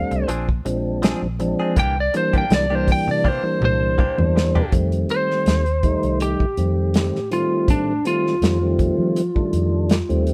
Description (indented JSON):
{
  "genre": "straight-eighth soul blues",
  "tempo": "81 BPM",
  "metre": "4/4",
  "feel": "swing 54% on 16ths",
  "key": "F mixolydian",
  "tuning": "A4 = 440 Hz",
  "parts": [
    { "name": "lightly driven lead guitar", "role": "melody", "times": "0.0-10.2 s", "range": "D4 to G5", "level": "-24 LUFS", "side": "equal", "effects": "none" },
    { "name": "mellow tonewheel organ", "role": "accompaniment", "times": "0.0-10.3 s", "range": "Eb3 to Eb4", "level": "-26 LUFS", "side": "equal", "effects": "overdrive, slow rotary speaker" },
    { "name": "direct-recorded clean electric guitar", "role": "stabs", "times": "0.1-4.7 s", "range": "E3 to Ab4", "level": "-32 LUFS", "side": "equal", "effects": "none" },
    { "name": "vintage muted fingered electric bass", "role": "bass", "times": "0.1-10.3 s", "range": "Bb1 to F3", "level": "-25 LUFS", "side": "equal", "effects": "none" },
    { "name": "warm soul drum kit", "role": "drums", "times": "0.1-10.3 s", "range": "hi-hat, kick drum, snare drum, toms", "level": "-23 LUFS", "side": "equal", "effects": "none" }
  ],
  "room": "light reverb",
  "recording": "band playing live in one room",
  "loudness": "-20 LUFS",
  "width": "mono",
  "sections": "0.0-4.7 A section; 4.7-10.3 B section",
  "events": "lead electric guitar solo 0.0-4.7; drum fill 3.2-4.7",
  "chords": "0.3 Bb9; 1.8 C9; 4.7 F9"
}